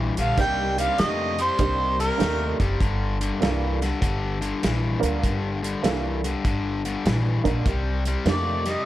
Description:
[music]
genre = electric blues shuffle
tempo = 99 BPM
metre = 4/4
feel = swing 66% on 8ths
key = G minor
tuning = A4 = 440 Hz
[part]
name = cranked stack guitar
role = riff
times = 0.0-8.8 s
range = G2 to A3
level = -27 LUFS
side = left 4 dB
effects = overdrive
[part]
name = upright bass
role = bass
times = 0.0-8.7 s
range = F#1 to F2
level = -27 LUFS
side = equal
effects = none
[part]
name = mellow harmonica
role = melody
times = 0.2-2.6, 8.3-8.9 s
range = Bb4 to G5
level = -26 LUFS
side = right 1 dB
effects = overdrive, analog delay
[part]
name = warm soul drum kit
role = drums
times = 0.2-8.8 s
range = hi-hat, kick drum, snare drum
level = -26 LUFS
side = equal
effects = none
[part]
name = honky-tonk upright piano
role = accompaniment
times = 0.4-8.6 s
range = Bb3 to Bb4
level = -30 LUFS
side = right 7 dB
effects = none
[sound]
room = light reverb, small room ambience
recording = faint mains hum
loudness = -21 LUFS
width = side -14 dB against mid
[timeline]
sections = 0.0-8.9 A section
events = none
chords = 0.4 Cm7; 2.8 Gm7; 7.7 Cm7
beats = | 0.38 0.98 1.59 2.20 | 2.81 3.41 4.02 4.62 | 5.23 5.84 6.45 7.05 | 7.66 8.26

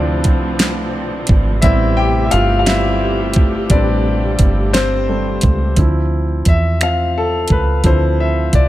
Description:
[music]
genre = slow six-eight R&B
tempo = 58 BPM (dotted quarters)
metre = 6/8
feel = straight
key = D dorian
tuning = A4 = 441 Hz
[part]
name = clear concert grand piano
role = accompaniment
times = 0.0-8.7 s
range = F3 to G5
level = -17 LUFS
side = left 2 dB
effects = none
[part]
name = warm studio string section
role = sustained chords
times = 0.0-5.7 s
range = C3 to G4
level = -23 LUFS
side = right 1 dB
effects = stereo widening
[part]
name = deep dub fingered electric bass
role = bass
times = 0.0-8.7 s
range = G1 to E2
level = -17 LUFS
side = right 1 dB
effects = none
[part]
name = smooth R&B drum kit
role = drums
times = 0.2-8.7 s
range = finger snaps, hi-hat, kick drum, snare drum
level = -15 LUFS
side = right 1 dB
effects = none
[sound]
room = small room reverb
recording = none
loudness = -13 LUFS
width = side -15 dB against mid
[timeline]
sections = 0.0-5.8 A section; 5.8-8.7 B section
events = grand piano solo 0.0-5.8, 5.8-8.7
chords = 0.0 Dm7; 1.6 Am9; 5.8 Dm9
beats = 0.60 | 1.63 2.67 | 3.70 4.73 | 5.77 6.80 | 7.84

